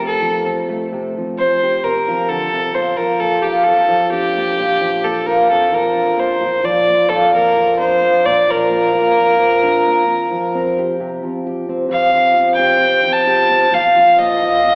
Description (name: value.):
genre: folk.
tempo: 66 BPM.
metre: 4/4.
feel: straight.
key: unclear.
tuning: A4 = 440 Hz.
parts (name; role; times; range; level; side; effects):
rich fiddle; melody; 0.0-14.8 s; G4 to A5; -17 LUFS; equal; none.
fingerpicked steel-string acoustic guitar; accompaniment; 0.0-14.8 s; F2 to G4; -19 LUFS; equal; none.
room: wet church reverb, RT60 3.0 s.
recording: recorded in a church or concert hall, AM radio sound.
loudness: -15 LUFS.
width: mono.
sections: 0.0-14.8 A section.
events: fiddle solo 0.0-14.8.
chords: 0.0 Fadd9/C; 2.8 Bb; 10.1 Fsus2; 13.7 Bb5.